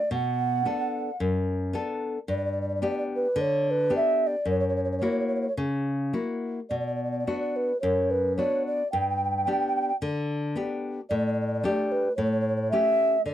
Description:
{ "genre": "italian folk, Italian serenade", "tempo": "110 BPM", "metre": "4/4", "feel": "swing 54% on 8ths, rubato", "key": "unclear", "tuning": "A4 = 440 Hz", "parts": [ { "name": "mellow alto ocarina", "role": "melody", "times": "0.0-13.3 s", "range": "B4 to G5", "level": "-25 LUFS", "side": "right 1 dB", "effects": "none" }, { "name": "nylon-string guitar", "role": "accompaniment", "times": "0.1-13.3 s", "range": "F#2 to A4", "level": "-28 LUFS", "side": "left 2 dB", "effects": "none" } ], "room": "moderate booth ambience, RT60 0.2 s", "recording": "dry, close 1970s-style studio recording", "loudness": "-24 LUFS", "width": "side -11 dB against mid", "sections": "0.0-13.3 A section", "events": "none", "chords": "0.1 Bm7; 2.3 G; 4.5 F#7; 6.7 Bm; 8.9 G; 11.1 A7sus4; 12.2 A7", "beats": "| 0.11 0.66 1.20 1.75 | 2.29 2.83 3.37 3.92 | 4.46 5.01 5.58 6.14 | 6.71 7.27 7.83 8.38 | 8.93 9.47 10.02 10.56 | 11.10 11.64 12.18 12.72 | 13.26" }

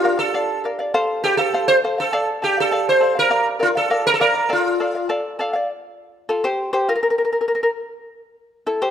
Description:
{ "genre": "andean folk", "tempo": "101 BPM", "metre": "2/4", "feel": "straight", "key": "unclear", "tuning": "A4 = 440 Hz", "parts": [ { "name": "sitar", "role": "melody", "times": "0.0-5.1 s", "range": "F4 to C5", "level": "-18 LUFS", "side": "right 1 dB", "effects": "none" }, { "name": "charango", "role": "accompaniment", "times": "0.0-8.9 s", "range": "E4 to F5", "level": "-20 LUFS", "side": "left 1 dB", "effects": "none" } ], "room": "moderate recital hall reverb, RT60 1.5 s", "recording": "close, detailed microphones", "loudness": "-17 LUFS", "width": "side -9 dB against mid", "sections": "0.0-5.7 A section; 5.7-8.9 B section", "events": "charango solo 5.7-8.9", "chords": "0.0 Bb; 0.9 F; 2.1 Dm; 3.3 Bb; 4.5 Dm; 5.7 Fadd9; 6.9 N.C.; 8.1 Emadd11", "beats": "0.33 | 0.93 1.53 | 2.12 2.72 | 3.31 3.91 | 4.50 5.10 | 5.69 6.29 | 6.88 7.47 | 8.07 8.66" }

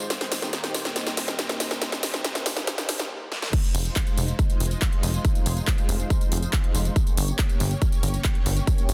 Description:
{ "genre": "uplifting trance", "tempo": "140 BPM", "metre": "4/4", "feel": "straight", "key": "F minor", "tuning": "A4 = 440 Hz", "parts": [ { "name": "analog string pad", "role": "sustained chords", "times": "0.0-8.9 s", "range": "Ab3 to Db5", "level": "-36 LUFS", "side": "equal", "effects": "ensemble chorus, sidechain pumping" }, { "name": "big-room dance drum kit", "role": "drums", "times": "0.0-8.9 s", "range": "crash cymbal, handclaps, hi-hat, snare drum, tambourine", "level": "-30 LUFS", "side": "equal", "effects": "high-pass filter on hats, high-pass filter on snare, high-pass filter on perc, high-pass filter on cymbals, high-pass filter on room" }, { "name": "electronic kick drum", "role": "drums", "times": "3.5-8.8 s", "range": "none", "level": "-25 LUFS", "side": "equal", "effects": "none" }, { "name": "plucky analog bass", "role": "bass", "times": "3.7-8.9 s", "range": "F1 to G1", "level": "-27 LUFS", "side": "equal", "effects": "sidechain pumping" } ], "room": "light reverb", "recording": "dense, heavily limited modern master, high-pass filter", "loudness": "-25 LUFS", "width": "mono", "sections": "0.0-3.5 A section; 3.5-8.9 B section", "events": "build-up 0.0-3.5; drum fill 0.0-3.1, 3.3; stop 3.1-3.5; drop 3.5-8.9", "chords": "0.1 Cm7; 3.5 Fm7; 7.0 Gdim", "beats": "| 0.10 0.53 0.96 1.39 | 1.82 2.25 2.67 3.10 | 3.53 3.96 4.39 4.82 | 5.25 5.67 6.10 6.53 | 6.96 7.39 7.82 8.24 | 8.67" }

